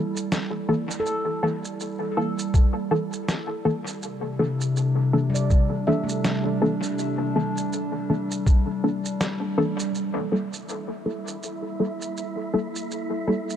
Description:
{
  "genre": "ambient dub",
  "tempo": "81 BPM",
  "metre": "4/4",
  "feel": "swing 58% on 16ths",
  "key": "G dorian",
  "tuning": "A4 = 438 Hz",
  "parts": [
    { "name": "warbly tape-like pad", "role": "sustained chords", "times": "0.0-13.6 s", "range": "C3 to A4", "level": "-28 LUFS", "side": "equal", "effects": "chorus, built-in reverb" },
    { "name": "filtered dub chord stab", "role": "stabs", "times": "0.0-13.5 s", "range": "E3 to A4", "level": "-27 LUFS", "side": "left 1 dB", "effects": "analog chorus, vintage 12-bit sampler grit, dub echo" },
    { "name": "electronic shaker and snare drum", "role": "drums", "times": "0.2-13.6 s", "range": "none", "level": "-31 LUFS", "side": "equal", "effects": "dub echo" },
    { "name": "handpan", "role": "arpeggios", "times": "1.0-8.7 s", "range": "G3 to E5", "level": "-32 LUFS", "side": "right 1 dB", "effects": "dub echo" },
    { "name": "electronic kick drum", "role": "drums", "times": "2.5-8.6 s", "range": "none", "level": "-17 LUFS", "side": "equal", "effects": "none" },
    { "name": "wind-like tuned noise texture", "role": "texture", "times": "10.7-13.6 s", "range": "E4 to E5", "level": "-34 LUFS", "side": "right 1 dB", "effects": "built-in reverb" }
  ],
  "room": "light reverb",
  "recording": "dark, warm production",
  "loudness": "-23 LUFS",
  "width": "side -9 dB against mid",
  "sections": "0.0-9.9 A section; 9.9-13.6 B section",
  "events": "band accent 9.2-9.6",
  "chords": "0.0 Gm69; 4.0 C13; 9.9 Gm69"
}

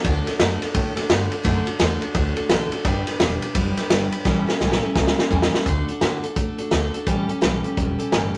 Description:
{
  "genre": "rockabilly",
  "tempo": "171 BPM",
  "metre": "4/4",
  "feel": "swing 63% on 8ths",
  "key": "D major",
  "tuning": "A4 = 440 Hz",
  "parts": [
    { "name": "picked steel-string acoustic guitar", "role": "accompaniment", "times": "0.0-8.4 s", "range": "A2 to B4", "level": "-27 LUFS", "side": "equal", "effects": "none" },
    { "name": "upright bass", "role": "bass", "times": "0.0-8.4 s", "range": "E1 to A2", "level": "-29 LUFS", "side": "equal", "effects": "none" },
    { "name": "vintage drum kit", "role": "drums", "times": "0.0-8.4 s", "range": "hi-hat, kick drum, ride cymbal, snare drum", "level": "-24 LUFS", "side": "equal", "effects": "none" }
  ],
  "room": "moderate studio reverb, RT60 0.8 s",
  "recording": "none",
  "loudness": "-22 LUFS",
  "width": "mono",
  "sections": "0.0-5.7 A section; 5.7-8.4 B section",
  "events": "drum fill 4.3-5.7",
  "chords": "0.0 D; 2.9 G; 4.3 A7; 5.7 D; 7.1 A7"
}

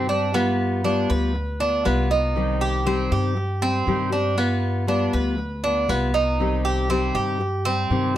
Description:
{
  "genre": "latin",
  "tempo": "119 BPM",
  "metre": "4/4",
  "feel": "straight",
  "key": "C harmonic minor",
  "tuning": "A4 = 435 Hz",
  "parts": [
    { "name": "fingerpicked steel-string acoustic guitar", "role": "accompaniment", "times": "0.0-8.2 s", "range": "C3 to G4", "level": "-25 LUFS", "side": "left 4 dB", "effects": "none" },
    { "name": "Cuban tres", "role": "arpeggios", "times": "0.0-8.1 s", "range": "B3 to B4", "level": "-24 LUFS", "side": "right 3 dB", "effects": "none" },
    { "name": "upright bass", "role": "bass", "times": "0.0-8.2 s", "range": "C2 to G2", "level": "-25 LUFS", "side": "equal", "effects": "none" }
  ],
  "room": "light reverb",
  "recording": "close, detailed microphones",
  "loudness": "-20 LUFS",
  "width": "side -12 dB against mid",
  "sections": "0.0-8.2 A section",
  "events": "none",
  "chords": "0.3 G7; 2.4 Cm; 4.4 G7; 6.4 Cm"
}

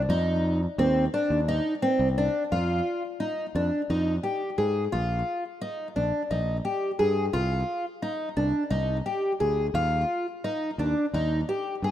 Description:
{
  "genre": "progressive instrumental, band music in an uneven meter",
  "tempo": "174 BPM (eighths)",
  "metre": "7/8",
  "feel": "straight",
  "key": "F dorian",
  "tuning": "A4 = 440 Hz",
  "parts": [
    { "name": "overdriven fingered electric bass", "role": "bass", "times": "0.0-11.9 s", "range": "Bb1 to Ab2", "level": "-27 LUFS", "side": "equal", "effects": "none" },
    { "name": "fingerpicked twelve-string acoustic guitar", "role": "arpeggios", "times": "0.1-11.9 s", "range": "C4 to Ab4", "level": "-26 LUFS", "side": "equal", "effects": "ping-pong delay" }
  ],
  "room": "light reverb, small room ambience",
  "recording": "rough home demo mix",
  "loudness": "-24 LUFS",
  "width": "side -11 dB against mid",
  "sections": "0.0-2.5 A section; 2.5-11.9 B section",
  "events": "none",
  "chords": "0.1 F5; 2.5 Fm7; 4.9 Bb7sus4; 7.3 Cm; 9.8 Eb"
}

